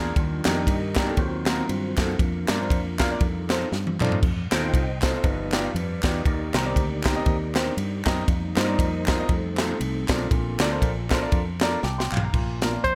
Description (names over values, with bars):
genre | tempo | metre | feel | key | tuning
uptempo gospel | 118 BPM | 4/4 | swing 57% on 8ths | Bb major | A4 = 440 Hz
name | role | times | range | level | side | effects
clear grand piano | accompaniment | 0.0-12.9 s | G2 to D6 | -31 LUFS | equal | none
fingered electric bass | bass | 0.0-12.9 s | G1 to G2 | -31 LUFS | equal | none
percussive tonewheel organ | sustained chords | 0.2-11.1 s | Eb3 to G5 | -34 LUFS | equal | fast rotary speaker
crisp fusion drum kit | drums | 0.2-12.9 s | crash cymbal, hi-hat, kick drum, ride cymbal, snare drum, toms | -27 LUFS | equal | none
group handclap | percussion | 0.5-12.2 s | none | -37 LUFS | equal | none
warm trumpet | melody | 12.8-12.9 s | C5 | -23 LUFS | equal | none
room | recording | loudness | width
light reverb, studio reverb | none | -24 LUFS | mono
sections
0.0-12.3 A section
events
drum fill 3.7-4.2, 11.8-12.3; grand piano fill 11.3-12.3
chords
0.2 Ebmaj7; 1.2 Ebm6; 2.2 Bb/F; 3.2 F7; 5.2 G7b13; 6.3 Cm7; 8.3 F7sus4; 9.3 F7; 10.3 Bbmaj7; 12.3 Bb